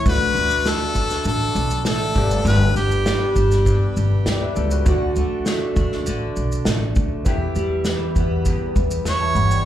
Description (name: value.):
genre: acoustic pop.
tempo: 100 BPM.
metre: 4/4.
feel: straight.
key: D major.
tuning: A4 = 438 Hz.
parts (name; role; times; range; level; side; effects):
clear harmonica; melody; 0.0-3.3, 9.1-9.7 s; G4 to C#5; -23 LUFS; left 1 dB; slapback echo, ping-pong delay.
bright concert grand piano; accompaniment; 0.0-9.7 s; A3 to B5; -32 LUFS; left 4 dB; slapback echo.
picked steel-string acoustic guitar; accompaniment; 0.0-9.7 s; E2 to G4; -24 LUFS; right 1 dB; double-tracked left and right, slapback echo.
upright bass; bass; 0.1-9.6 s; G1 to E2; -21 LUFS; equal; none.
unplugged drum kit; drums; 0.1-9.7 s; kick drum, shaker, snare drum; -23 LUFS; equal; none.
room: light reverb.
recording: live gig heard through the venue's PA, club reverb.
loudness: -17 LUFS.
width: side -11 dB against mid.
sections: 0.1-9.7 A section.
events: none.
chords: 0.1 D; 2.2 G; 4.9 D; 7.3 Em.